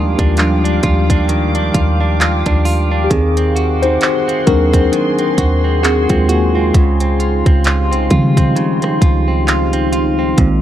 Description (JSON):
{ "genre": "contemporary R&B", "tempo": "66 BPM", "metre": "4/4", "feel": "swing 58% on 16ths", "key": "unclear", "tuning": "A4 = 440 Hz", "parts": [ { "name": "mellow tine electric piano", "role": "accompaniment", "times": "0.0-10.6 s", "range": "Eb3 to C5", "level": "-17 LUFS", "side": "left 2 dB", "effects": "medium stereo tremolo" }, { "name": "deep dark ambient pad", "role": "sustained chords", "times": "0.0-10.6 s", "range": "Eb4 to D6", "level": "-21 LUFS", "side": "left 2 dB", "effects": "chorus, built-in reverb, sidechain pumping" }, { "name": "direct-recorded clean electric guitar", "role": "arpeggios", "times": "0.0-10.6 s", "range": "Bb2 to Gb4", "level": "-21 LUFS", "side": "right 5 dB", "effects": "none" }, { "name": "clean 808-style bass", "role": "bass", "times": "0.0-10.6 s", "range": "Bb1 to Db3", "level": "-15 LUFS", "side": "equal", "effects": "none" }, { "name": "organic electronic drum kit", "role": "drums", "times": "0.2-10.6 s", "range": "handclaps, hi-hat, kick drum, rim click", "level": "-16 LUFS", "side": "equal", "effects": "none" } ], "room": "digital ambience", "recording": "dry, gritty hardware recording", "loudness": "-11 LUFS", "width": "side -11 dB against mid", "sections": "0.0-10.6 A section", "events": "tine electric piano solo 0.0-10.6", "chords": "0.0 Ebmaj9; 3.1 Ab7/Eb; 6.7 Dbmaj9#11", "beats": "0.38 1.29 2.20 | 3.11 4.02 4.93 5.83 | 6.74 7.65 8.56 9.47 | 10.38" }